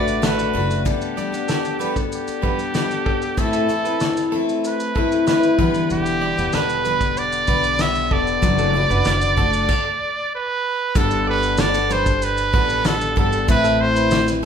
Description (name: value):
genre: acoustic pop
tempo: 95 BPM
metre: 4/4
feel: straight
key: G major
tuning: A4 = 440 Hz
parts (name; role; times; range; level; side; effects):
- bright trumpet; melody; 0.0-14.3 s; G4 to E5; -22 LUFS; right 2 dB; none
- picked steel-string acoustic guitar; accompaniment; 0.0-14.4 s; A2 to B4; -22 LUFS; left 4 dB; none
- electric guitar at the edge of break-up; arpeggios; 0.0-14.1 s; A4 to D5; -28 LUFS; right 3 dB; none
- upright bass; bass; 0.0-0.8, 5.9-14.4 s; E1 to B1; -25 LUFS; right 1 dB; none
- loose indie drum kit; drums; 0.1-14.4 s; crash cymbal, kick drum, shaker, snare drum; -23 LUFS; equal; none
room: moderate large studio reverb, RT60 1.5 s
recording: band playing live in one room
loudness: -17 LUFS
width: side -7 dB against mid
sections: 0.9-11.0 A section; 11.0-14.4 B section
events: stop 9.7-11.0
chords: 0.0 Bm7; 0.9 Gadd9; 3.4 Amadd9; 5.6 Em7; 8.4 Bm7/F#; 11.0 Gadd9; 13.5 Amadd9